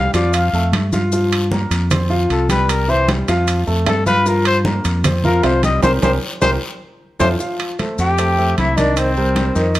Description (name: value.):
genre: Afro-Cuban jazz.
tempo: 153 BPM.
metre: 4/4.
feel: straight.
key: F major.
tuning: A4 = 441 Hz.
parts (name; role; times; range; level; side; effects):
breathy trumpet; melody; 0.0-9.8 s; C4 to F5; -19 LUFS; left 2 dB; none.
clear grand piano; accompaniment; 0.0-9.8 s; Eb3 to F6; -20 LUFS; equal; none.
fingered electric bass; bass; 0.0-9.8 s; C2 to G2; -18 LUFS; equal; none.
congas; percussion; 0.1-9.8 s; none; -23 LUFS; equal; none.
guiro; percussion; 0.1-9.8 s; none; -32 LUFS; left 4 dB; none.
maracas; percussion; 0.1-9.8 s; none; -33 LUFS; left 5 dB; none.
timbales; percussion; 0.1-9.8 s; none; -24 LUFS; right 6 dB; none.
breathy reedy pan flute; second line; 8.0-9.8 s; C5 to G5; -22 LUFS; right 3 dB; none.
room: moderate large studio reverb, RT60 1.2 s.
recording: none.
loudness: -14 LUFS.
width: side -15 dB against mid.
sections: 0.0-7.4 A section; 7.4-9.8 B section.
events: trumpet solo 0.0-7.4; band accent 5.8-7.4; drum fill 6.4-7.4.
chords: 0.3 F; 1.1 Gm7; 1.9 F5; 2.7 C; 3.5 F; 4.3 Gm7; 5.0 F5; 5.8 C5; 6.6 Fmaj7; 7.4 Fadd9; 9.0 Cm7.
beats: 0.34 0.73 | 1.12 1.51 1.91 2.30 | 2.69 3.08 3.48 3.87 | 4.26 4.65 5.04 5.44 | 5.83 6.22 6.61 7.01 | 7.40 7.79 8.18 8.57 | 8.97 9.36 9.75.